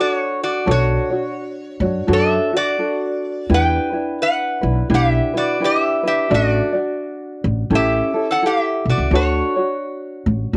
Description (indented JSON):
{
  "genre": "Hawaiian",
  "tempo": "85 BPM",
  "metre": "4/4",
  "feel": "swing 62% on 8ths",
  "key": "D major",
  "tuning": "A4 = 440 Hz",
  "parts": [
    { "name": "metal-body resonator slide guitar", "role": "melody", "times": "0.0-10.6 s", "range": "F#4 to G5", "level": "-22 LUFS", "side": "equal", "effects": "none" },
    { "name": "tenor ukulele", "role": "accompaniment", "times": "0.0-10.6 s", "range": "C#4 to D5", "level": "-24 LUFS", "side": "equal", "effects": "none" },
    { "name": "upright bass", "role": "bass", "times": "0.7-10.6 s", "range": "A1 to F#2", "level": "-21 LUFS", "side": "equal", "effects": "none" }
  ],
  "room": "light reverb",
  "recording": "home recording on cassette",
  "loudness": "-19 LUFS",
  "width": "mono",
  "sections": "0.0-10.6 A section",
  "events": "none",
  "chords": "0.0 Dmaj7; 0.7 Bm9 (rootless); 3.5 Em7; 6.3 D/A; 7.7 A7; 9.1 Dmaj7",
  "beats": "| 0.68 1.38 2.08 2.79 | 3.49 4.19 4.90 5.60 | 6.31 7.01 7.72 8.42 | 9.13 9.83 10.54"
}